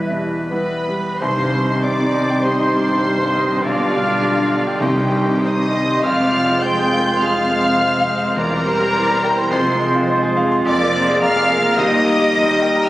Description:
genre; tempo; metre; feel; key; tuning
classical, romantic movement for piano and orchestra; 102 BPM; 4/4; uneven beats, rubato; C minor; A4 = 439 Hz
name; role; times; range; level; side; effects
clear concert grand piano; melody; 0.0-12.9 s; B1 to C6; -21 LUFS; equal; none
clear oboe; second line; 0.0-12.9 s; Bb4 to D5; -25 LUFS; right 1 dB; none
silver concert flute; second line; 0.0-12.9 s; F4 to G5; -26 LUFS; left 1 dB; none
warm clarinet; second line; 0.0-12.9 s; D4 to F4; -25 LUFS; right 1 dB; none
mellow bassoon; accompaniment; 0.0-12.9 s; G3 to Ab3; -30 LUFS; equal; none
mellow French horn section; sustained chords; 0.0-12.9 s; G3 to C5; -24 LUFS; equal; none
rich chamber violin section; melody; 0.5-12.9 s; F5 to G6; -25 LUFS; left 1 dB; none
warm chamber violin section; second line; 0.5-12.9 s; F4 to G5; -26 LUFS; left 2 dB; none
mellow trumpet; stabs; 0.5-12.9 s; F4 to G5; -23 LUFS; equal; none
bright trombone section; sustained chords; 1.2-12.9 s; D3 to Bb3; -27 LUFS; right 2 dB; none
dark chamber double bass section; bass; 1.2-12.8 s; E1 to Eb2; -30 LUFS; right 2 dB; none
warm studio cello section; bass; 1.2-12.8 s; Eb2 to C3; -28 LUFS; right 1 dB; none
rich chamber viola section; accompaniment; 2.4-12.9 s; Ab4 to Eb5; -30 LUFS; right 1 dB; none
timpani; percussion; 4.8-5.7 s; C3; -28 LUFS; equal; none
room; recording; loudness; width
wet concert hall reverb, RT60 2.1 s; recorded on a phone in the room, club ambience, compression; -15 LUFS; side -16 dB against mid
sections
0.0-1.2 A section; 1.2-12.9 B section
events
none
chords
0.0 Em; 1.2 Cm; 3.6 G/B; 4.8 Cm; 6.0 Fm; 8.4 C/E; 9.5 Fm; 10.7 Bb7/F; 11.8 Eb

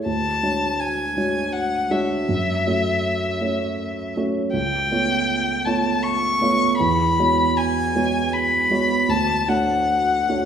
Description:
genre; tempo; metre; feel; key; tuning
classical, impressionist duo for violin and grand piano; 80 BPM; 3/4; rubato; F# minor; A4 = 440 Hz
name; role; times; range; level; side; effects
dark baby grand piano; accompaniment; 0.0-10.5 s; C#2 to C#5; -22 LUFS; right 3 dB; none
warm violin; melody; 0.1-10.5 s; E5 to C#6; -21 LUFS; left 3 dB; none
room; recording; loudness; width
wet recital hall reverb, RT60 1.6 s; recorded in a church or concert hall; -18 LUFS; side -8 dB against mid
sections
0.0-10.5 A section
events
none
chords
0.1 Dmaj7#11; 2.3 F#m7; 4.5 C#aug7; 6.8 E69; 9.1 Dmaj7

